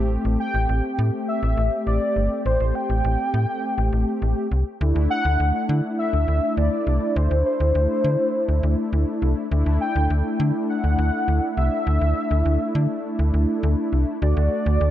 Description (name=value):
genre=synth-pop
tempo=102 BPM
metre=4/4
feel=straight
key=unclear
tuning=A4 = 440 Hz
part: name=mellow synth brass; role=accompaniment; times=0.0-14.9 s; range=A3 to G4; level=-25 LUFS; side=left 1 dB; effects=chorus
part: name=slap-like FM bass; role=bass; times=0.0-14.9 s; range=G1 to D3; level=-20 LUFS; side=equal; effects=none
part: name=warm velvety synth lead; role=melody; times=0.4-14.9 s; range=C5 to G5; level=-25 LUFS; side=equal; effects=chorus, digital delay
room=moderate lush hall reverb, RT60 2.8 s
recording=dark, warm production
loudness=-19 LUFS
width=side -12 dB against mid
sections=0.0-14.2 A section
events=none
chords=0.0 Am7; 4.8 Dsus2; 14.2 D